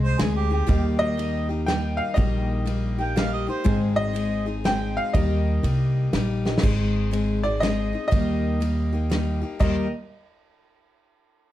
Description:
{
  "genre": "honky-tonk and classic country",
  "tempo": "121 BPM",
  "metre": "3/4",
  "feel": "swing 64% on 8ths",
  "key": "Eb major",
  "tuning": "A4 = 440 Hz",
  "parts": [
    { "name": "bright upright piano", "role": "melody", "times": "0.0-9.9 s", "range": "D5 to G5", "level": "-28 LUFS", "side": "left 1 dB", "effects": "plate reverb" },
    { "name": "mellow harmonica", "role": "second line", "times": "0.0-3.8, 9.6-9.9 s", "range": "G4 to G5", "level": "-30 LUFS", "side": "right 5 dB", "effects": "none" },
    { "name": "picked steel-string acoustic guitar", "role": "accompaniment", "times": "0.0-9.9 s", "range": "Ab2 to Ab4", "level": "-28 LUFS", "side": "left 4 dB", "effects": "none" },
    { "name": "upright bass", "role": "bass", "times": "0.0-9.9 s", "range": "Ab1 to Eb2", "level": "-24 LUFS", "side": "right 1 dB", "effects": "none" },
    { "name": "natural country drum kit", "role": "drums", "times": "0.2-9.8 s", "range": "crash cymbal, kick drum, ride cymbal, snare drum", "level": "-25 LUFS", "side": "right 1 dB", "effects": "none" },
    { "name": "dark baby grand piano", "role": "accompaniment", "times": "0.7-6.6 s", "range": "G4 to Eb5", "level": "-36 LUFS", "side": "right 3 dB", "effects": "none" }
  ],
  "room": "light reverb",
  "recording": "dark, warm production",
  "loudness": "-21 LUFS",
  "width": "side -13 dB against mid",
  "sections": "0.0-6.6 A section; 6.6-9.6 B section; 9.6-11.1 C section",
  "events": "drum fill 6.4",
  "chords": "0.0 Ab; 0.7 Eb; 3.7 Ab; 5.1 Eb; 6.6 Ab; 8.1 Eb"
}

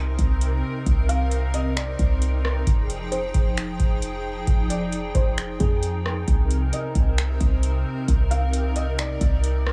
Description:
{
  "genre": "hip hop, atmospheric cloud-rap",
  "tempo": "133 BPM",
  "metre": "4/4",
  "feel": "half-time",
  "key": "C minor",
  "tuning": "A4 = 441 Hz",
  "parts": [
    { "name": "felt-muted upright piano", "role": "melody", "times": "0.0-9.7 s", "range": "Ab4 to F5", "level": "-35 LUFS", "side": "equal", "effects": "low-pass filter, digital delay" },
    { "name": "hollow soft pad", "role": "sustained chords", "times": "0.0-9.7 s", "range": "C3 to G5", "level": "-32 LUFS", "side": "equal", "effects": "ensemble chorus, sidechain pumping" },
    { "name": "clean 808-style bass", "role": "bass", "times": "0.0-9.7 s", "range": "F1 to F2", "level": "-26 LUFS", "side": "equal", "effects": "none" },
    { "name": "drifting glass-harmonics texture", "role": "texture", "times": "0.0-9.7 s", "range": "Eb4 to Bb5", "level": "-41 LUFS", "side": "equal", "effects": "chorus, built-in reverb" },
    { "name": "booming analog drum machine", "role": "drums", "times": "0.2-9.7 s", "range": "finger snaps, hi-hat, kick drum, rim click", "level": "-25 LUFS", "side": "equal", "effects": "none" }
  ],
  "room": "digital ambience",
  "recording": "none",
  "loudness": "-23 LUFS",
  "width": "mono",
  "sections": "0.0-9.7 A section",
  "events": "none",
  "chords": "0.0 Cm7; 2.7 Fm9; 6.3 Cm7"
}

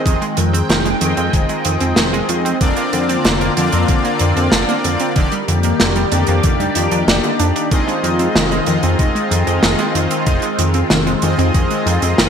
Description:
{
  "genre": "synthwave",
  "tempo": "94 BPM",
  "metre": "4/4",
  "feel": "straight",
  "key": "F dorian",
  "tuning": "A4 = 443 Hz",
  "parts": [
    { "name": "phased analog pad", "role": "sustained chords", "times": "0.0-12.3 s", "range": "D3 to G5", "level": "-21 LUFS", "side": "left 1 dB", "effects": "phaser, chorus, sidechain pumping" },
    { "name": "analog pluck", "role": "arpeggios", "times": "0.0-12.3 s", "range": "D3 to D4", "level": "-22 LUFS", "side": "right 2 dB", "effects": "chorus, cassette tape, digital delay" },
    { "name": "analog synth brass", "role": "stabs", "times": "0.1-12.3 s", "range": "Bb3 to Eb5", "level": "-21 LUFS", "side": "left 2 dB", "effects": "chorus, digital delay" },
    { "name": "chorused synth bass", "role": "bass", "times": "0.1-12.3 s", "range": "F1 to F2", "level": "-19 LUFS", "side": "equal", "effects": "sidechain pumping" },
    { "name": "electronic kick drum", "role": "drums", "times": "0.1-11.7 s", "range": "none", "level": "-16 LUFS", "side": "equal", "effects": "overdrive" },
    { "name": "modern studio drum kit", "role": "drums", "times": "0.1-12.3 s", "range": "hi-hat, snare drum", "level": "-19 LUFS", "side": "right 1 dB", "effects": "gated reverb" }
  ],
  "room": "moderate lush hall reverb, RT60 2.1 s",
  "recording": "bright 1980s-style digital production",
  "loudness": "-13 LUFS",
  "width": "side -7 dB against mid",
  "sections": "0.0-12.3 A section",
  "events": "none",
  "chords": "0.0 Fm7; 2.6 Bbadd9/F; 5.2 Ebmaj7/F; 7.7 Fm7"
}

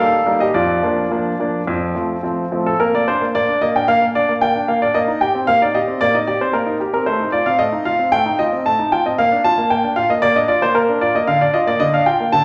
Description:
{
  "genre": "classical-period piano sonatina",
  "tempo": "113 BPM",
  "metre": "4/4",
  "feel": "rubato",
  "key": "Bb major",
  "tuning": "A4 = 439 Hz",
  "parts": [
    { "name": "warm concert grand piano", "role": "solo", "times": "0.0-12.4 s", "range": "F2 to A5", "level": "-17 LUFS", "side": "equal", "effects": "none" }
  ],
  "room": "wet recital hall reverb, RT60 1.5 s",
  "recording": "none",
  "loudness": "-17 LUFS",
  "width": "mono",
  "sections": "0.0-2.8 A section; 2.8-12.4 B section",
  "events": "none",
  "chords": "0.0 Eb; 0.5 Bb/F; 1.7 F; 2.8 Bb; 7.1 F7/A; 9.2 Bb; 11.3 Bb/D"
}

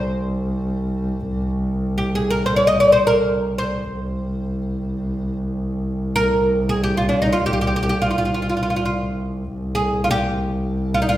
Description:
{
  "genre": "Arabic maqam ensemble",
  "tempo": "free time",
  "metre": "none",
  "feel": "none",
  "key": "C maqam bayati",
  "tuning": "A4 = 439 Hz",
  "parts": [
    { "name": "oud", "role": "melody", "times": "0.0-11.2 s", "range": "D4-50c to Eb5", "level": "-18 LUFS", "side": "equal", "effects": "none" },
    { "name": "warm double bass", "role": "drone", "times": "0.0-11.2 s", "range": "C2", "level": "-22 LUFS", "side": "equal", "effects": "none" }
  ],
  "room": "wet recital hall reverb, RT60 1.4 s",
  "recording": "recorded in a church or concert hall",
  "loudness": "-18 LUFS",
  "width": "side -14 dB against mid",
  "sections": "0.0-11.2 A section",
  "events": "none",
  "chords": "none"
}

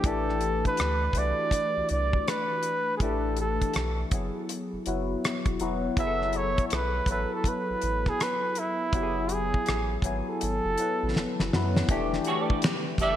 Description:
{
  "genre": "R&B, neo-soul",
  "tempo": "81 BPM",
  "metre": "4/4",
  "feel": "swing 62% on 16ths",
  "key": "unclear",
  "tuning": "A4 = 440 Hz",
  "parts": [
    { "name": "warm flugelhorn", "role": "melody", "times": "0.0-13.2 s", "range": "E4 to E5", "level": "-29 LUFS", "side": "right 2 dB", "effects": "none" },
    { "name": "barky tine electric piano", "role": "accompaniment", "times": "0.0-13.2 s", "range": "E3 to G#5", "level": "-31 LUFS", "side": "left 4 dB", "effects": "overdrive, phaser" },
    { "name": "round analog bass", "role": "bass", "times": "0.0-13.2 s", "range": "E1 to F#2", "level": "-32 LUFS", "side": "equal", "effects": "none" },
    { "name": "damped 70s drum kit", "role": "drums", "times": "0.0-13.2 s", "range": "finger snaps, hi-hat, kick drum, rim click, snare drum", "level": "-28 LUFS", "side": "equal", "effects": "gated reverb" },
    { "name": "semi-hollow electric guitar", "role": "second line", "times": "12.3-13.2 s", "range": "G4 to D5", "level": "-30 LUFS", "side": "right 4 dB", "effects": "ensemble chorus" }
  ],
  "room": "moderate lush hall reverb, RT60 3.0 s",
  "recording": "bright 1980s-style digital production",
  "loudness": "-25 LUFS",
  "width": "side -11 dB against mid",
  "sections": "0.0-11.9 A section; 11.9-13.2 B section",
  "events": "drum fill 11.2-11.9",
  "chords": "0.0 Am11; 4.1 F#m11; 11.9 Em11"
}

